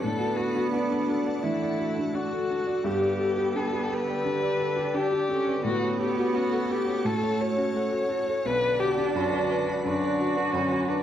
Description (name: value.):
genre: neoclassical piano and strings.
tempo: 85 BPM.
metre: 4/4.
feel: rubato.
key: B minor.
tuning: A4 = 438 Hz.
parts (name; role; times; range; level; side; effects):
muted violin; melody; 0.0-11.0 s; C#4 to C#5; -28 LUFS; left 3 dB; none.
muted cello; second line; 0.0-11.0 s; A3 to F#4; -31 LUFS; right 4 dB; none.
felt-muted upright piano; accompaniment; 0.0-11.0 s; B1 to D5; -31 LUFS; left 1 dB; none.
soft additive organ-like pad; sustained chords; 0.0-11.0 s; D3 to F#5; -38 LUFS; equal; ensemble chorus, built-in reverb, phaser.
harp-like synth pluck; arpeggios; 0.0-11.0 s; D4 to B5; -32 LUFS; right 2 dB; chorus, slapback echo.
room: moderate recital hall reverb, RT60 1.6 s.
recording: dark, warm production.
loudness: -24 LUFS.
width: side -10 dB against mid.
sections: 0.0-11.0 A section.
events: none.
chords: 0.0 Dadd9/A; 2.9 Gadd9; 5.6 F#m/A; 8.5 Bm.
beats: | 0.02 0.72 1.44 2.15 | 2.85 3.56 4.26 4.96 | 5.65 6.34 7.05 7.75 | 8.46 9.16 9.85 10.54.